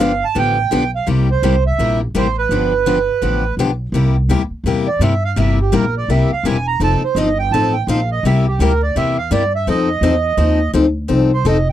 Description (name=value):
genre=acoustic string swing (jazz manouche)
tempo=168 BPM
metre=4/4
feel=swing 61% on 8ths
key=C mixolydian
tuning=A4 = 438 Hz
part: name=accordion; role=melody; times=0.0-11.7 s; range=G4 to Bb5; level=-18 LUFS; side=right 6 dB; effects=none
part: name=picked steel-string acoustic guitar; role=accompaniment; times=0.0-11.6 s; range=C3 to A4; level=-17 LUFS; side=left 5 dB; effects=none
part: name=upright bass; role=bass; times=0.0-11.7 s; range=E1 to G2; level=-18 LUFS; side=equal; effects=none
room=little or no reverb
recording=dry, close 1970s-style studio recording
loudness=-14 LUFS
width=side -12 dB against mid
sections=0.0-3.9 A section; 3.9-11.7 B section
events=accordion solo 3.9-11.7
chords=0.0 G7; 1.1 C7; 2.5 G7; 3.9 C7; 6.8 F7; 8.2 C7; 9.7 F7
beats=0.00 0.36 0.72 | 1.08 1.43 1.79 2.15 | 2.51 2.87 3.23 3.58 | 3.94 4.30 4.66 5.02 | 5.37 5.73 6.09 6.45 | 6.81 7.16 7.52 7.88 | 8.24 8.59 8.95 9.31 | 9.67 10.02 10.38 10.74 | 11.10 11.45